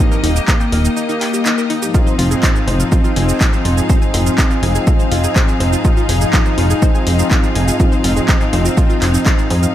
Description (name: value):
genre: melodic techno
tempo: 123 BPM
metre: 4/4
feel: straight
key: F minor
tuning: A4 = 441 Hz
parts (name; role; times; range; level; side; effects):
- soft supersaw; melody; 0.0-9.7 s; Bb3 to Eb4; -21 LUFS; equal; sidechain pumping, tape echo
- bright symphonic string section; sustained chords; 0.0-9.7 s; Eb4 to F5; -26 LUFS; left 2 dB; sidechain pumping
- wide unison pluck; arpeggios; 0.0-9.7 s; Eb4 to Ab5; -25 LUFS; equal; cassette tape, sidechain pumping, analog delay
- brassy analog pad; stabs; 0.0-9.7 s; G2 to Eb4; -22 LUFS; left 3 dB; chorus, sidechain pumping, analog delay
- warbly tape-like pad; texture; 3.5-9.7 s; F4 to Ab5; -27 LUFS; left 1 dB; chorus, built-in reverb, sidechain pumping
- punchy analog drum machine; drums; 0.1-9.7 s; handclaps, hi-hat, shaker; -21 LUFS; equal; none
- plucky analog bass; bass; 0.2-9.7 s; Eb1 to F2; -15 LUFS; equal; sidechain pumping
- electronic kick drum; drums; 0.5-9.4 s; none; -14 LUFS; equal; none
room: light reverb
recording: none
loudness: -12 LUFS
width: side -12 dB against mid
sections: 0.0-9.7 A section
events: break 1.0-1.9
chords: 0.0 Ebadd9; 1.9 Fm7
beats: 0.48 0.97 1.46 | 1.94 2.43 2.92 3.41 | 3.90 4.38 4.87 5.36 | 5.85 6.33 6.82 7.31 | 7.80 8.29 8.77 9.26